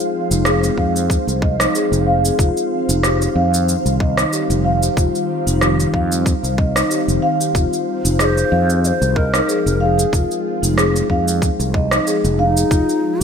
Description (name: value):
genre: organic downtempo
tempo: 93 BPM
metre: 4/4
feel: swing 54% on 16ths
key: F minor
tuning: A4 = 440 Hz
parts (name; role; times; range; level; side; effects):
- ethereal airy pad; sustained chords; 0.0-13.2 s; Eb3 to F5; -23 LUFS; equal; ensemble chorus, built-in reverb, sidechain pumping
- marimba with soft mallets; arpeggios; 0.3-13.2 s; Eb4 to F5; -20 LUFS; left 1 dB; low-pass filter, ping-pong delay
- fretless electric bass; bass; 0.3-13.2 s; F1 to F2; -18 LUFS; equal; sidechain pumping
- electronic shaker and rim click; drums; 0.3-13.2 s; none; -21 LUFS; right 1 dB; gated reverb
- electronic kick drum; drums; 0.8-12.8 s; none; -18 LUFS; equal; none
- hollow bass bansuri; melody; 8.2-13.2 s; Eb4 to Eb5; -22 LUFS; left 2 dB; digital delay
room: moderate plate reverb, RT60 1.9 s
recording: bright 1980s-style digital production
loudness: -14 LUFS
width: side -7 dB against mid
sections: 0.0-13.2 A section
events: filter sweep on marimba 0.0-13.2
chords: 0.0 Fm; 2.4 Cm/F; 7.5 Fm; 12.7 Cm/F